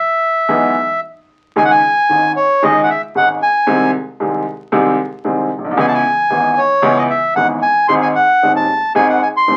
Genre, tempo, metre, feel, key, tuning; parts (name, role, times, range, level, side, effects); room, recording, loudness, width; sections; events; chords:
tango; 114 BPM; 4/4; rubato; C# minor; A4 = 440 Hz
bandoneon; melody; 0.0-9.6 s; C#5 to B#5; -15 LUFS; equal
clear baby grand piano; accompaniment; 0.5-9.6 s; D#1 to G#4; -18 LUFS; equal
wet club reverb, RT60 0.5 s; very old 78 rpm record, vinyl crackle; -14 LUFS; mono
0.0-1.6 A section; 1.6-9.6 B section
0.0 E; 1.6 C#sus2; 3.7 G#/B#; 5.8 C#m7; 7.9 G#